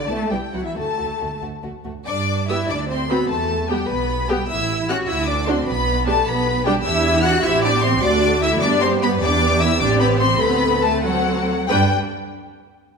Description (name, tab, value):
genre	quick classical-period movement for string orchestra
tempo	86-103 BPM (dotted quarters)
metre	6/8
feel	rubato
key	G major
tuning	A4 = 440 Hz
part	rich chamber violin section	melody	0.0-11.9 s	E5 to F#6	-23 LUFS	left 4 dB	none
part	warm chamber viola section	accompaniment	0.0-11.9 s	A3 to B4	-23 LUFS	right 1 dB	none
part	warm chamber cello section	bass	0.0-11.9 s	E3 to F#4	-24 LUFS	right 1 dB	none
part	warm chamber violin section	second line	0.1-11.9 s	A3 to G5	-25 LUFS	left 4 dB	none
part	warm studio double bass section	bass	0.1-11.9 s	A1 to G2	-24 LUFS	right 5 dB	none
room	moderate scoring stage reverb, RT60 1.8 s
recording	none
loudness	-17 LUFS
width	side -5 dB against mid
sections	0.0-2.1 A section; 2.1-11.7 B section; 11.7-12.9 C section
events	none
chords	0.1 Cmaj7; 0.8 D; 2.1 G; 2.7 D7; 3.3 Em; 4.5 A7; 5.1 D; 5.7 G/B; 6.9 Em7; 7.4 Am7; 8.0 D; 8.6 G; 9.2 Em; 9.8 Am7; 10.4 D7; 11.7 G